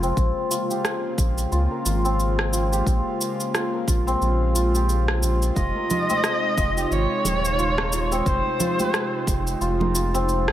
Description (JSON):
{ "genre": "organic downtempo", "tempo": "89 BPM", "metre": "4/4", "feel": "swing 58% on 16ths", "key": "F minor", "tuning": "A4 = 440 Hz", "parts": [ { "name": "airy breathy pad", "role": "sustained chords", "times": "0.0-10.5 s", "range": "C3 to F4", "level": "-29 LUFS", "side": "left 1 dB", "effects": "chorus, sidechain pumping" }, { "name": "santur", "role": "arpeggios", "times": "0.0-10.5 s", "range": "C4 to Bb4", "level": "-26 LUFS", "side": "left 1 dB", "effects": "low-pass filter, tape echo" }, { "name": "round analog bass", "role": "bass", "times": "0.0-10.5 s", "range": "Eb1 to Db2", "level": "-23 LUFS", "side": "equal", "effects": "none" }, { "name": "electronic shaker and rim click", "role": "drums", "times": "0.0-10.5 s", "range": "none", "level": "-28 LUFS", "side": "right 1 dB", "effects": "none" }, { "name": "electronic kick drum", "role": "drums", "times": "0.2-9.4 s", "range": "none", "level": "-24 LUFS", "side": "equal", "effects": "none" }, { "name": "warm kamancheh", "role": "melody", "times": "5.6-9.6 s", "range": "C5 to Eb5", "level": "-25 LUFS", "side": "right 1 dB", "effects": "tape echo" }, { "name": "congas and bongos", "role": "percussion", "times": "5.8-10.3 s", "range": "none", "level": "-30 LUFS", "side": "right 4 dB", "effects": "none" } ], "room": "light reverb", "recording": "none", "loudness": "-20 LUFS", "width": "side -12 dB against mid", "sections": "0.0-10.5 A section", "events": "filter sweep on santur 0.0-10.5", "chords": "0.2 Bbm7; 5.6 Fm7" }